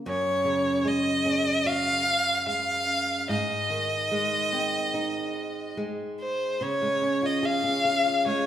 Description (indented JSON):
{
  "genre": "children's music, lullaby",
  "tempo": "73 BPM",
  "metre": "4/4",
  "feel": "straight",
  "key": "Db major",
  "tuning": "A4 = 440 Hz",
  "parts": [
    { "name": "flamenco guitar", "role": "accompaniment", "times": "0.0-8.5 s", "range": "Gb2 to Ab4", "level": "-29 LUFS", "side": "right 1 dB", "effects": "none" },
    { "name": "rich violin", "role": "melody", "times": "0.1-8.5 s", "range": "C5 to F5", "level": "-25 LUFS", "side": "left 1 dB", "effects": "none" }
  ],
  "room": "wet recital hall reverb, RT60 1.5 s",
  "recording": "recorded in a church or concert hall",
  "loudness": "-24 LUFS",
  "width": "side -10 dB against mid",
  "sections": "0.0-6.6 A section; 6.6-8.5 B section",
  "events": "none",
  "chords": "0.1 Gbsus2; 3.3 Ab; 6.6 Db"
}